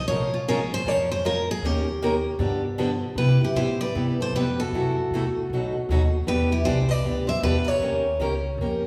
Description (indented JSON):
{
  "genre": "acoustic string swing (jazz manouche)",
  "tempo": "155 BPM",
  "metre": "4/4",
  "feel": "swing 64% on 8ths",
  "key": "unclear",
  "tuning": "A4 = 440 Hz",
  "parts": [
    { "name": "picked steel-string acoustic guitar", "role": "melody", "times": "0.0-8.9 s", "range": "F4 to E5", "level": "-30 LUFS", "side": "equal", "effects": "none" },
    { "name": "picked steel-string acoustic guitar", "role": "accompaniment", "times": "0.1-8.8 s", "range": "B2 to Bb4", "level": "-29 LUFS", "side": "equal", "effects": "none" },
    { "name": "upright bass", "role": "bass", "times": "0.1-8.9 s", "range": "Bb1 to C3", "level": "-29 LUFS", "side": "equal", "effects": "none" },
    { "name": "picked steel-string acoustic guitar", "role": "second line", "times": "3.2-8.9 s", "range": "E4 to C5", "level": "-34 LUFS", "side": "equal", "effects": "none" }
  ],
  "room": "wet recital hall reverb, RT60 1.6 s",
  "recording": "recorded in a church or concert hall",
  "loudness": "-24 LUFS",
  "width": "mono",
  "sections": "0.0-3.2 A section; 3.2-8.9 B section",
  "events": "steel-string acoustic guitar solo 0.0-3.2",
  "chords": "0.1 Bbm7; 1.6 Eb7; 2.4 G7; 3.2 Cmaj7; 4.7 F#m7b5; 5.5 B7; 6.3 Em7; 7.8 Eb9",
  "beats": "| 0.09 0.47 0.86 1.24 | 1.63 2.02 2.40 2.79 | 3.17 3.56 3.95 4.33 | 4.72 5.11 5.50 5.88 | 6.27 6.66 7.04 7.43 | 7.82 8.21 8.59"
}